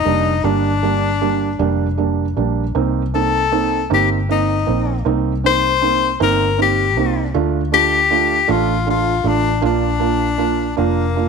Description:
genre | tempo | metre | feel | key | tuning
six-eight pop ballad | 52 BPM (dotted quarters) | 6/8 | straight | unclear | A4 = 439 Hz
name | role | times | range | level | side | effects
warm tenor saxophone | melody | 0.0-11.3 s | Bb3 to C5 | -17 LUFS | left 9 dB | none
felt-muted upright piano | accompaniment | 0.1-11.3 s | G3 to F4 | -19 LUFS | right 12 dB | none
vintage muted fingered electric bass | bass | 0.1-11.3 s | F1 to D2 | -21 LUFS | left 1 dB | none
room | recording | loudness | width
moderate echo chamber reverb, RT60 1.6 s, small room reverb | 1960s-style stereo with parts hard left and right | -15 LUFS | side -5 dB against mid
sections
0.0-11.3 A section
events
none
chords
0.0 Gm; 2.8 Cm7; 7.3 Dm; 9.6 Bb

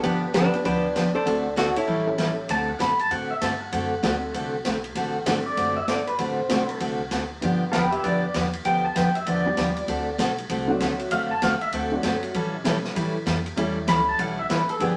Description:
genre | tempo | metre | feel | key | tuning
country, western swing | 195 BPM | 4/4 | swing 63% on 8ths | D mixolydian | A4 = 439 Hz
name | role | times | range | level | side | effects
archtop guitar, miked and amplified | melody | 0.0-2.3 s | D4 to D5 | -30 LUFS | equal | none
hollow-body jazz guitar | second line | 0.0-2.3 s | B3 to F#4 | -29 LUFS | equal | none
honky-tonk upright piano | accompaniment | 0.0-15.0 s | F#3 to A4 | -33 LUFS | equal | none
picked steel-string acoustic guitar | accompaniment | 0.0-15.0 s | D3 to A4 | -28 LUFS | equal | none
upright bass | bass | 0.0-15.0 s | F#1 to B2 | -40 LUFS | equal | none
swinging big-band drum kit | drums | 0.0-14.9 s | hi-hat, ride cymbal, snare drum | -34 LUFS | equal | none
pedal steel guitar | second line | 2.5-15.0 s | G4 to B5 | -28 LUFS | equal | none
room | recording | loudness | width
wet studio reverb, RT60 0.6 s | none | -24 LUFS | mono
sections
0.0-2.5 A section; 2.5-15.0 B section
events
pedal steel guitar solo 2.5-15.0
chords
0.0 G7; 1.3 D7; 1.9 A7; 2.5 D7; 7.4 G7; 9.9 D7; 12.3 A7

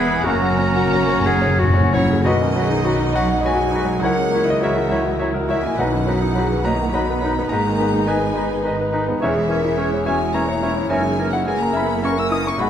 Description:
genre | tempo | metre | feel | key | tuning
classical | 104 BPM | 3/4 | rubato | B major | A4 = 439 Hz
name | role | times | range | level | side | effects
clear concert grand piano | melody | 0.0-12.7 s | B1 to E6 | -20 LUFS | left 1 dB | none
rich chamber violin section | melody | 0.0-12.7 s | A#4 to B5 | -36 LUFS | left 4 dB | none
hollow concert flute | second line | 0.0-12.7 s | G#5 to B5 | -38 LUFS | left 1 dB | none
warm chamber violin section | second line | 0.0-12.7 s | C#4 to E6 | -29 LUFS | left 2 dB | none
warm clarinet | second line | 0.0-12.7 s | C#4 to G#4 | -27 LUFS | left 2 dB | none
warm oboe | second line | 0.0-12.7 s | A#4 to C#5 | -32 LUFS | right 2 dB | none
mellow bassoon | accompaniment | 0.0-12.7 s | D#3 to C#4 | -31 LUFS | right 2 dB | none
warm chamber viola section | accompaniment | 0.0-12.7 s | D#3 to E4 | -28 LUFS | right 3 dB | none
dark chamber cello section | bass | 0.0-12.7 s | E2 to E4 | -28 LUFS | right 3 dB | none
dark chamber double bass section | bass | 0.0-12.7 s | E1 to C#2 | -27 LUFS | right 3 dB | none
clear trombone section | sustained chords | 0.2-0.5 s | none | barely audible | none | none
dark French horn section | sustained chords | 0.3-12.7 s | C#4 to B4 | -26 LUFS | left 3 dB | none
mellow trumpet | stabs | 0.3-0.5 s | F#4 | -32 LUFS | right 3 dB | none
timpani | percussion | 0.3-6.6 s | F#2 to B2 | -22 LUFS | left 2 dB | none
room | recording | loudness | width
moderate scoring stage reverb, RT60 1.7 s | close, detailed microphones | -16 LUFS | side -9 dB against mid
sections
0.0-2.3 A section; 2.3-12.7 B section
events
timpani fill 0.3-2.3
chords
0.3 F#; 2.3 B; 4.0 F#7/C#; 5.8 B; 7.5 G#m; 9.2 C#m/E; 10.9 F#9

